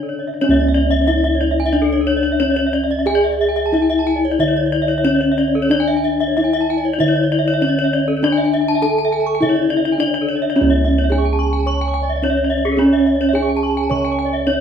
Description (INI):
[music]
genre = gamelan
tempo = 91-107 BPM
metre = 4/4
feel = straight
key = C# pelog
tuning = A4 = 440 Hz
[part]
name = gamelan-type bronze metallophone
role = melody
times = 0.0-14.6 s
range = C#4 to C#5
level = -18 LUFS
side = left 2 dB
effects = none
[part]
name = gamelan-type bronze metallophone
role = arpeggios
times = 0.0-14.6 s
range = A4-20c to C#6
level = -26 LUFS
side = right 6 dB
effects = none
[part]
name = gamelan-type bossed gongs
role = bass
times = 0.0-14.6 s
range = C#2 to G#4-30c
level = -20 LUFS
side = right 2 dB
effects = none
[part]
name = gamelan-type bronze metallophone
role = arpeggios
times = 0.1-14.5 s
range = G#4-30c to C#6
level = -21 LUFS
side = left 2 dB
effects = none
[sound]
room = moderate large studio reverb, RT60 0.8 s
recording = band playing live in one room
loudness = -14 LUFS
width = side -8 dB against mid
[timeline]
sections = 0.0-10.6 A section; 10.6-14.6 B section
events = none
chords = none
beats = | 0.43 1.09 1.75 2.41 | 3.07 3.73 4.39 5.05 | 5.71 6.36 7.00 7.62 | 8.23 8.83 9.42 9.99 | 10.55 11.11 11.67 12.23 | 12.79 13.35 13.91 14.47